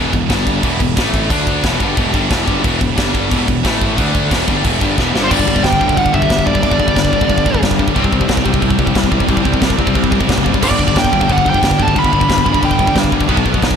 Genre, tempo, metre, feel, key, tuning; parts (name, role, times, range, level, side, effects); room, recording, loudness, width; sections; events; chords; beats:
heavy metal; 180 BPM; 4/4; straight; A4 = 439 Hz
heavy high-gain guitar; riff; 0.0-13.8 s; E2 to D4; -21 LUFS; right 12 dB; distortion
high-gain distorted guitar; riff; 0.0-13.8 s; E2 to D4; -19 LUFS; left 10 dB; distortion, slapback echo
fuzz picked electric bass; bass; 0.0-13.7 s; E1 to G2; -20 LUFS; equal; overdrive
tight metal drum kit; drums; 0.1-13.8 s; china cymbal, crash cymbal, kick drum, snare drum; -17 LUFS; equal
high-gain lead guitar; melody; 5.2-7.6, 10.6-12.9 s; C5 to B5; -17 LUFS; right 1 dB; distortion, slapback echo, ping-pong delay
tight distorted guitar; riff; 5.3-13.8 s; G2 to C4; -22 LUFS; equal; distortion
moderate lush hall reverb, RT60 2.3 s; big arena sound, lossy compression artefacts; -12 LUFS; side -7 dB against mid
0.0-5.3 A section; 5.3-13.8 B section
drum fill 5.0-5.3
0.3 G5; 0.6 E5; 1.0 A5; 1.3 D5; 1.6 Em; 3.0 G5; 3.3 E5; 3.6 A5; 4.0 D5; 4.3 Em; 5.3 G5; 8.0 C5; 10.6 G
0.30 0.64 0.97 | 1.30 1.64 1.97 2.30 | 2.64 2.97 3.30 3.64 | 3.97 4.30 4.64 4.97 | 5.30 5.63 5.97 6.30 | 6.63 6.96 7.30 7.63 | 7.96 8.30 8.63 8.96 | 9.29 9.63 9.96 10.29 | 10.63 10.96 11.29 11.62 | 11.96 12.29 12.62 12.96 | 13.29 13.62